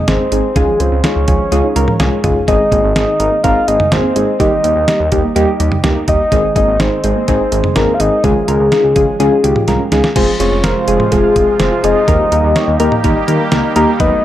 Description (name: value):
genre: synth-pop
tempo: 125 BPM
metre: 4/4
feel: straight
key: Ab major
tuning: A4 = 439 Hz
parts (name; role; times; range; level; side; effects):
- soft octave-layered synth lead; melody; 0.0-14.2 s; Ab4 to F5; -16 LUFS; left 1 dB; chorus, dub echo
- warbly dusty pluck; arpeggios; 0.0-14.2 s; Eb3 to F5; -22 LUFS; right 4 dB; chorus, dub echo
- soft electric-piano-like synth keys; accompaniment; 0.1-14.1 s; G3 to Db5; -16 LUFS; left 2 dB; chorus
- smooth synth bass; bass; 0.1-14.1 s; F1 to Eb2; -18 LUFS; right 1 dB; none
- detuned 8-bit digital drum machine; drums; 0.1-14.1 s; crash cymbal, hi-hat, kick drum, snare drum, toms; -18 LUFS; right 1 dB; dub echo
- sweeping resonant pad; sustained chords; 10.2-14.2 s; C3 to G4; -21 LUFS; right 2 dB; chorus
room: wet spring reverb, RT60 1.7 s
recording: echo-heavy mix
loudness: -10 LUFS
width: side -12 dB against mid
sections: 0.0-10.2 A section; 10.2-14.2 B section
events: drum fill 9.7-10.2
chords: 0.0 Abadd9; 0.6 Dbadd9; 2.5 Abadd9; 4.4 Eb; 6.3 Abadd9; 8.2 Dbadd9; 10.2 Fm; 12.1 Eb